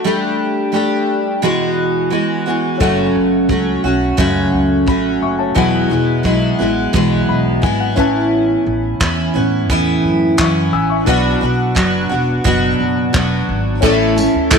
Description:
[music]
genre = acoustic pop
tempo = 87 BPM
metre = 4/4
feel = straight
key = A major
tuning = A4 = 440 Hz
[part]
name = picked steel-string acoustic guitar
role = accompaniment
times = 0.0-14.6 s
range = E2 to A4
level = -14 LUFS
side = right 1 dB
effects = double-tracked left and right
[part]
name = warm grand piano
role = accompaniment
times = 2.8-14.6 s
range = C#4 to E6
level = -23 LUFS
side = left 11 dB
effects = none
[part]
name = upright bass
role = bass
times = 2.8-14.6 s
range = E1 to A2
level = -21 LUFS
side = equal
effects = none
[part]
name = compact cocktail drum kit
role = drums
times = 2.8-14.6 s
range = crash cymbal, handclaps, kick drum, tambourine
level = -19 LUFS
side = equal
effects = none
[part]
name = group handclap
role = percussion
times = 14.5-14.6 s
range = none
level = -20 LUFS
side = right 15 dB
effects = none
[sound]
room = moderate echo chamber reverb, RT60 2.0 s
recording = 1960s-style stereo with parts hard left and right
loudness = -13 LUFS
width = side -5 dB against mid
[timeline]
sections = 0.0-2.8 A section; 2.8-13.8 B section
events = grand piano fill 6.9-8.3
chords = 0.1 Gsus2; 1.4 Eadd9; 2.8 F#m; 5.6 Eadd9; 8.0 Aadd9; 11.1 Bm; 13.8 A

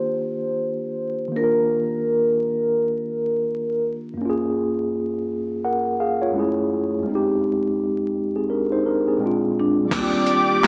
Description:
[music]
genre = lo-fi hip hop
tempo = 84 BPM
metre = 4/4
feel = swing 61% on 16ths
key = Eb major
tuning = A4 = 440 Hz
[part]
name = vibraphone with soft mallets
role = melody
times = 0.0-3.8, 9.6-10.7 s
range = C4 to C5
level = -25 LUFS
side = equal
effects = none
[part]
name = mellow tine electric piano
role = accompaniment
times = 0.0-10.7 s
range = F2 to Gb5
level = -24 LUFS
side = equal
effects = none
[part]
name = warm symphonic string section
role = sustained chords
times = 9.9-10.7 s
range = G4 to D6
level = -22 LUFS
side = equal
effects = none
[part]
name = upright bass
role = bass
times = 9.9-10.6 s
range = Eb2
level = -33 LUFS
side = equal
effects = none
[part]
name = boom bap sampler-style drum kit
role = drums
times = 9.9-10.7 s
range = crash cymbal, handclaps, hi-hat, kick drum, snare drum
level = -26 LUFS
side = equal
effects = none
[sound]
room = moderate plate reverb, RT60 2.5 s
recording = dreamy mix soaked in reverb, vinyl crackle, small speaker sound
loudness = -22 LUFS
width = mono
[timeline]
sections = 0.0-9.9 A section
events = none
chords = 0.0 Ebmaj7; 4.2 Gbmaj7; 6.3 Gbm7; 7.1 Fm7; 9.2 Bb7; 9.9 Ebmaj7

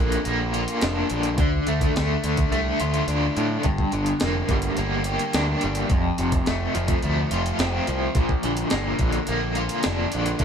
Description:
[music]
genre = classic rock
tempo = 106 BPM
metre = 4/4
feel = straight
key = unclear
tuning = A4 = 440 Hz
[part]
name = overdriven electric guitar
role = riff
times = 0.0-10.4 s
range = F2 to G4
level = -24 LUFS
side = left 1 dB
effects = tremolo
[part]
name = growling picked electric bass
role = bass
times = 0.0-10.4 s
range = F1 to A2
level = -26 LUFS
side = equal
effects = overdrive
[part]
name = breakbeat sampler-style drum kit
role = drums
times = 0.1-10.4 s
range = hi-hat, kick drum, snare drum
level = -25 LUFS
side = equal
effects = none
[sound]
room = light reverb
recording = band playing live in one room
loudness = -21 LUFS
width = side -7 dB against mid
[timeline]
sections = 0.0-10.4 A section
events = kick and snare drop out 3.1-3.7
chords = 0.0 Bb; 1.4 Dm; 3.7 Gm; 5.9 F; 8.2 Bb

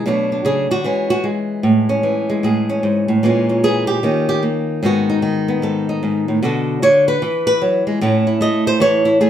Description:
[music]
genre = solo jazz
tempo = 151 BPM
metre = 4/4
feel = swing 64% on 8ths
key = unclear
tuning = A4 = 440 Hz
[part]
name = flamenco guitar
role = solo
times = 0.0-9.3 s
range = G#2 to D#5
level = -14 LUFS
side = equal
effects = none
[sound]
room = wet studio reverb, RT60 0.7 s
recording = heard from further back in the room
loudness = -14 LUFS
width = side -10 dB against mid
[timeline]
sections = 0.0-9.3 A section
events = nylon-string guitar solo 0.0-9.3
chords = 0.0 Bm7; 0.8 E6; 1.6 Amaj7; 3.2 A#m7b5; 4.0 D#5; 4.8 G#m7; 6.4 Bm7; 7.2 Eadd9; 8.0 A

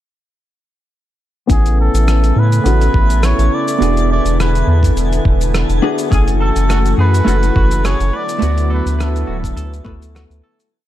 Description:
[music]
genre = sunset chillout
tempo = 104 BPM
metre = 4/4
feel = swing 53% on 16ths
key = A major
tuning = A4 = 440 Hz
[part]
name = trumpet with cup mute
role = melody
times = 1.5-9.6 s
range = G#4 to D5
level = -22 LUFS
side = equal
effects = tape echo
[part]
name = vintage hollow-body jazz guitar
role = accompaniment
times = 1.5-10.7 s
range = A3 to G#5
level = -21 LUFS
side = moving between left 8 dB and right 7 dB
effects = auto-pan, low-pass filter, tape echo
[part]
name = lush unison pad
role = sustained chords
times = 1.5-10.7 s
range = C#3 to F#4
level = -22 LUFS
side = left 1 dB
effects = chorus
[part]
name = round analog bass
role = bass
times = 1.5-10.4 s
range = D1 to A2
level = -14 LUFS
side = equal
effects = none
[part]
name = dusty soul sampler-style drum kit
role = drums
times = 1.5-10.7 s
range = hi-hat, rim click, shaker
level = -25 LUFS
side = equal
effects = overdrive
[part]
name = electronic kick drum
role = drums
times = 1.5-10.0 s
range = none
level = -15 LUFS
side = equal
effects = overdrive
[part]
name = twinkling granular texture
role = texture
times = 2.3-10.7 s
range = A4 to G#5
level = -29 LUFS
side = right 2 dB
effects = built-in reverb
[part]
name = semi-hollow electric guitar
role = arpeggios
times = 6.1-10.6 s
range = F#4 to B4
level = -32 LUFS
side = right 2 dB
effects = tape echo
[sound]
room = digital ambience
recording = dark, warm production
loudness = -12 LUFS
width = side -13 dB against mid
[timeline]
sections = 1.5-10.7 groove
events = filter sweep on hollow-body jazz guitar 1.5-10.7; fade-out 7.7-10.7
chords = 1.5 Amaj7; 3.8 E7; 6.1 F#m9; 8.1 D69

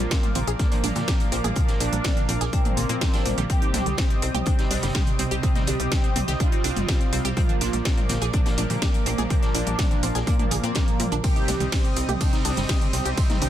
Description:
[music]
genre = melodic techno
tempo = 124 BPM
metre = 4/4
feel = straight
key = unclear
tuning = A4 = 440 Hz
[part]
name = mellow synth brass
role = melody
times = 0.0-13.5 s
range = Bb3 to G4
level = -32 LUFS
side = equal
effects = chorus, phaser, vintage 12-bit sampler grit, sidechain pumping, dub echo
[part]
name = warm analog pad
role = sustained chords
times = 0.0-13.5 s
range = Bb4 to Eb6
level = -34 LUFS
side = equal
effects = chorus, sidechain pumping
[part]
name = tight sequenced synth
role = arpeggios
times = 0.0-13.5 s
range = G3 to Ab4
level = -32 LUFS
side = equal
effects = chorus, sidechain pumping, ping-pong delay
[part]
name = brassy analog pad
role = stabs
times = 0.0-13.5 s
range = Bb2 to C4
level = -30 LUFS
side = right 2 dB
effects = chorus, cassette tape, sidechain pumping, ping-pong delay
[part]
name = tight sequencer bass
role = bass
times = 0.0-13.5 s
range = G1 to Bb2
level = -27 LUFS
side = equal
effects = sidechain pumping
[part]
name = electronic kick drum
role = drums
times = 0.1-13.3 s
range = none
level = -23 LUFS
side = equal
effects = none
[part]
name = street-band drum kit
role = drums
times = 0.1-13.5 s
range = hi-hat, snare drum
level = -39 LUFS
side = equal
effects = none
[part]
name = techno drum kit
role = drums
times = 0.1-13.5 s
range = hi-hat, ride cymbal, snare drum, toms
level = -29 LUFS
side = right 1 dB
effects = none
[sound]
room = little or no reverb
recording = dense, heavily limited modern master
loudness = -20 LUFS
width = side -11 dB against mid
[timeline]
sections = 0.0-13.5 A section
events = none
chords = 0.0 Bb; 3.5 Cm; 7.4 Bb; 11.2 Cm

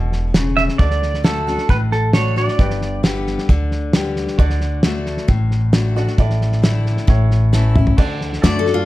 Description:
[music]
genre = honky-tonk and classic country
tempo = 134 BPM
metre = 4/4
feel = straight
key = D major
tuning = A4 = 439 Hz
[part]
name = clear concert grand piano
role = accompaniment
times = 0.0-8.9 s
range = E4 to A5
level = -30 LUFS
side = right 5 dB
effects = none
[part]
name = picked steel-string acoustic guitar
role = accompaniment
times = 0.0-8.9 s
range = G2 to G4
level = -23 LUFS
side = left 4 dB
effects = none
[part]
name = upright bass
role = bass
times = 0.0-8.9 s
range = E1 to F#2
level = -18 LUFS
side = equal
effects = none
[part]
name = cloth-damped thuddy drum kit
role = drums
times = 0.1-8.7 s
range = crash cymbal, hi-hat, kick drum, snare drum, toms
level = -18 LUFS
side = equal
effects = none
[part]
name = pedal steel guitar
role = second line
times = 0.6-3.0 s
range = A4 to E5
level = -20 LUFS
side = right 4 dB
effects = none
[part]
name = picked steel-string acoustic guitar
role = melody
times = 8.4-8.9 s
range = F4 to D5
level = -18 LUFS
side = left 6 dB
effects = none
[part]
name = pedal steel guitar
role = sustained chords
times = 8.4-8.9 s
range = A4 to D5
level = -25 LUFS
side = right 2 dB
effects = none
[sound]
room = light reverb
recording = dark, warm production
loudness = -14 LUFS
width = side -17 dB against mid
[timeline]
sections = 0.0-8.0 A section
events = pedal steel guitar solo 0.0-8.0; grand piano fill 7.3-8.0; drum fill 7.5-8.0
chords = 0.0 Aadd9; 0.8 D; 2.6 G; 4.4 D; 6.2 Asus4; 7.1 A; 8.0 D

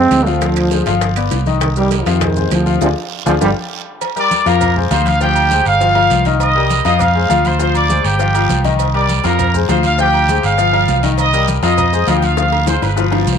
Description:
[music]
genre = latin, salsa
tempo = 201 BPM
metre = 4/4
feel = straight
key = C minor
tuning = A4 = 442 Hz
[part]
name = mellow trombone section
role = melody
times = 0.0-3.5 s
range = C3 to C4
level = -17 LUFS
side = right 3 dB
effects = none
[part]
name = bright concert grand piano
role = accompaniment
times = 0.0-13.4 s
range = Eb3 to F5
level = -18 LUFS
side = left 12 dB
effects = none
[part]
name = fingered electric bass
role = bass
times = 0.0-13.4 s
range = G1 to F2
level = -17 LUFS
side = right 1 dB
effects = none
[part]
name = bongos and cowbell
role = percussion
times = 0.1-13.4 s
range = none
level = -27 LUFS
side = left 14 dB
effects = none
[part]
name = congas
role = percussion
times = 0.1-13.4 s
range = none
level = -25 LUFS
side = right 1 dB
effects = none
[part]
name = guiro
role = percussion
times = 0.1-13.4 s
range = none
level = -29 LUFS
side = right 18 dB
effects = none
[part]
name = maracas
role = percussion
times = 0.1-13.4 s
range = none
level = -31 LUFS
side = right 21 dB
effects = none
[part]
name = timbales and agogo bells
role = percussion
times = 0.1-13.4 s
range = none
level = -25 LUFS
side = right 15 dB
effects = none
[part]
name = clear trumpet section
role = melody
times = 4.2-13.1 s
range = G4 to Eb6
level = -16 LUFS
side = right 2 dB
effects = none
[sound]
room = moderate spring reverb, RT60 2.4 s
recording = 1960s-style stereo with parts hard left and right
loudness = -12 LUFS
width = side -7 dB against mid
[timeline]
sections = 0.0-4.0 A section; 4.0-13.4 B section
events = band accent 2.8-4.0; drum fill 3.4-4.0, 12.4-13.4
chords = 0.4 Dm7b5; 1.0 G7; 1.6 Cm7; 2.2 Dm7b5; 3.4 G5; 4.0 Bb6; 4.6 Fm; 5.2 Dm7b5; 5.8 Cmadd11/G; 6.4 Cm7; 7.0 Fm; 7.6 Dm7b5; 8.2 Cmadd11/G; 8.8 Cm7; 9.4 Fm; 10.0 Dm7b5; 10.6 Cmadd11/G; 11.2 Cm7; 11.8 Fm; 12.4 Dm7b5

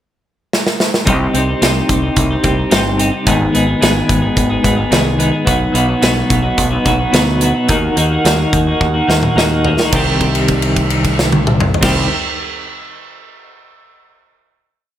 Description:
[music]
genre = quiet-loud alternative rock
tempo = 108 BPM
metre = 4/4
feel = straight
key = C harmonic minor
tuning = A4 = 441 Hz
[part]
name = big rock drum kit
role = drums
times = 0.5-12.0 s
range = crash cymbal, hi-hat, kick drum, snare drum, toms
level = -16 LUFS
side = right 1 dB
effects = none
[part]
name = twelve-string electric guitar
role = arpeggios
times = 1.1-12.1 s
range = Ab2 to Ab4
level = -15 LUFS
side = equal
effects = tremolo, digital delay
[part]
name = growling fingered electric bass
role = bass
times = 1.1-12.1 s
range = G1 to Eb2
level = -18 LUFS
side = equal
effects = overdrive
[sound]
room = moderate large studio reverb, RT60 1.3 s, small room ambience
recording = none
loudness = -12 LUFS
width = side -11 dB against mid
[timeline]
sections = 0.0-1.1 pickup bar; 1.1-9.9 verse; 9.9-12.2 final chord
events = drum fill 0.5-1.1, 8.8-9.9; held note 9.9-11.8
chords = 0.0 N.C.; 1.1 Cm; 3.3 Abm; 5.5 B; 7.7 Ebm; 9.9 Cm

